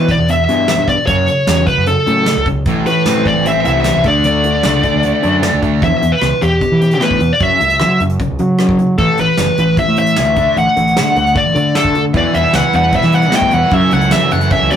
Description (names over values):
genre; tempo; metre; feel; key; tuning
indie rock; 152 BPM; 4/4; straight; D major; A4 = 439 Hz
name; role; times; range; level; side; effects
smooth overdriven lead guitar; melody; 0.0-14.8 s; G4 to G5; -14 LUFS; equal; none
overdriven semi-hollow guitar; riff; 0.0-14.8 s; E2 to D4; -19 LUFS; left 5 dB; none
growling fingered electric bass; bass; 0.0-14.8 s; F#1 to F#3; -16 LUFS; right 1 dB; overdrive
soft brush drum kit; drums; 0.1-14.8 s; hi-hat, kick drum, rim click, snare drum; -21 LUFS; right 1 dB; none
thick fuzz guitar; riff; 2.7-5.8, 12.1-14.8 s; E2 to F#4; -18 LUFS; right 5 dB; distortion
bright tonewheel organ; sustained chords; 12.1-14.8 s; E4 to A5; -24 LUFS; equal; slow rotary speaker
room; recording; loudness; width
moderate studio reverb, RT60 0.5 s; rough rehearsal-room recording, warm saturation; -11 LUFS; side -9 dB against mid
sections
0.0-5.8 A section; 5.8-14.8 B section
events
none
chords
0.0 Em; 1.1 F#m; 2.7 Amadd9; 4.0 D; 5.8 Em; 7.4 F#5; 9.0 Asus2; 10.4 D; 12.2 Emadd9; 13.7 F#m7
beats
0.29 0.68 | 1.08 1.48 1.87 2.27 | 2.66 3.06 3.46 3.85 | 4.25 4.64 5.04 5.43 | 5.83 6.22 6.62 7.01 | 7.41 7.81 8.20 8.60 | 8.99 9.39 9.78 10.18 | 10.57 10.97 11.36 11.76 | 12.15 12.55 12.94 13.34 | 13.73 14.13 14.52